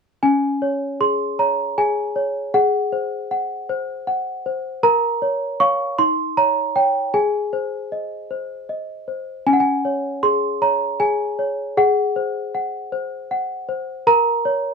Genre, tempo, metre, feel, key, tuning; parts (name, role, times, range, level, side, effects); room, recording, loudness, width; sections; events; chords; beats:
classical, lullaby for celesta; 52 BPM (dotted quarters); 6/8; straight; A4 = 441 Hz
small celesta; solo; 0.2-14.7 s; Db4 to Db6; -18 LUFS; equal
moderate studio reverb, RT60 0.5 s; dark, warm production; -18 LUFS; side -5 dB against mid
0.2-14.7 A section
0.2 Db5; 2.5 Ab7; 4.8 Bbm; 6.0 Eb7; 7.1 Ab; 9.5 Db5; 11.8 Ab7; 14.1 Bbm
| 0.22 1.38 | 2.53 3.68 | 4.83 5.98 | 7.14 8.30 | 9.46 10.62 | 11.77 12.92 | 14.07